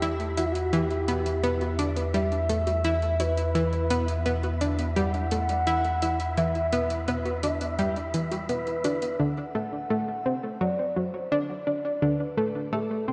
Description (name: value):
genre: ambient, sequencer-driven space music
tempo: 85 BPM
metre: 4/4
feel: straight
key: E minor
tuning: A4 = 439 Hz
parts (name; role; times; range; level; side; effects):
- expressive synth lead; melody; 0.0-13.1 s; E4 to F#5; -32 LUFS; equal; chorus, shimmer reverb, analog delay
- analog pluck; riff; 0.0-13.1 s; D3 to E4; -30 LUFS; equal; chorus, shimmer reverb, analog delay
- round analog bass; bass; 0.0-9.2 s; E2; -32 LUFS; equal; none
- electronic hi-hat and bongos; percussion; 0.0-9.2 s; none; -41 LUFS; equal; analog delay
- wind-like tuned noise texture; texture; 0.0-13.1 s; E4 to E5; -41 LUFS; equal; built-in reverb, shimmer reverb
room: wet lush hall reverb, RT60 2.7 s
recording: dreamy mix soaked in reverb, nothing above 10.8 kHz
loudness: -27 LUFS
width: mono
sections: 0.0-9.2 A section; 9.2-13.1 B section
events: none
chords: 0.0 Em; 9.2 D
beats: 0.03 | 0.73 1.44 2.14 2.85 | 3.55 4.26 4.97 5.67 | 6.38 7.08 7.79 8.49 | 9.20 9.91 10.61 11.32 | 12.03 12.73